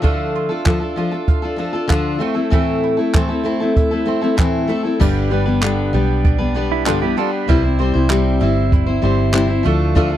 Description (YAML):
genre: acoustic pop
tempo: 97 BPM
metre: 4/4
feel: straight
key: unclear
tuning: A4 = 440 Hz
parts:
  - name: picked steel-string acoustic guitar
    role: accompaniment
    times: 0.0-10.2 s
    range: G2 to C5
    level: -18 LUFS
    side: left 4 dB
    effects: none
  - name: mandolin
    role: arpeggios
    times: 0.0-10.2 s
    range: G3 to G5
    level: -26 LUFS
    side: right 22 dB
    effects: none
  - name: jazz brush drum kit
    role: drums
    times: 0.0-10.1 s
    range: crash cymbal, handclaps, kick drum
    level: -17 LUFS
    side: right 1 dB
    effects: none
  - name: vintage muted fingered electric bass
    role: bass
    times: 5.0-10.2 s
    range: G1 to D2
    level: -18 LUFS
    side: right 1 dB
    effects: none
  - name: pedal steel guitar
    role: second line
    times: 6.7-7.6 s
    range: D4 to B4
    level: -21 LUFS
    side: right 20 dB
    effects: none
room: little or no reverb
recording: dry, close 1970s-style studio recording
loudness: -15 LUFS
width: side -12 dB against mid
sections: 0.0-5.0 A section; 5.0-10.2 B section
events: none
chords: 0.0 Dm; 2.2 Am; 5.0 G; 7.5 C; 9.7 Dm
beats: | 0.04 0.66 1.28 1.90 | 2.53 3.15 3.77 4.39 | 5.01 5.63 6.25 6.87 | 7.49 8.11 8.73 9.35 | 9.97